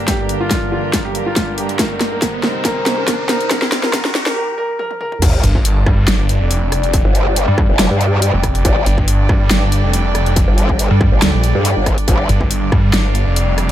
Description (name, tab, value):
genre	heavy wobble dubstep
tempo	140 BPM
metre	4/4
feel	swing 53% on 16ths, half-time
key	G minor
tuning	A4 = 440 Hz
part	warm baby grand piano	melody	0.0-5.2 s	F4 to Bb4	-22 LUFS	equal	low-pass filter, ping-pong delay
part	evolving wavetable pad	sustained chords	0.0-13.7 s	Eb2 to D5	-25 LUFS	equal	chorus, built-in reverb, sidechain pumping
part	riser and sub drop	sound effects	0.6-6.9 s	none	-24 LUFS	equal	none
part	rich chamber string section	texture	0.0-13.7 s	G3 to G5	-24 LUFS	right 2 dB	sidechain pumping
part	dubstep drum kit	drums	0.1-13.7 s	crash cymbal, hi-hat, rim click, snare drum, toms	-18 LUFS	equal	none
part	electronic kick drum	drums	0.1-12.8 s	none	-17 LUFS	equal	distortion
part	growl bass	bass	5.2-12.3 s	F1 to G2	-15 LUFS	equal	chorus, overdrive
part	snarling distorted saw bass	bass	5.4-13.7 s	F1 to G2	-15 LUFS	equal	distortion, overdrive
room	little or no reverb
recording	high-pass filter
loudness	-13 LUFS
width	side -12 dB against mid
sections	0.0-5.2 A section; 5.2-13.7 B section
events	build-up 0.0-5.2; drum fill 0.0-4.4, 4.8-5.2; riser 0.6-4.4; break 4.4-5.2; drop 5.2-13.7; impact 5.2-6.9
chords	0.0 Gm; 1.8 Eb6; 5.2 G5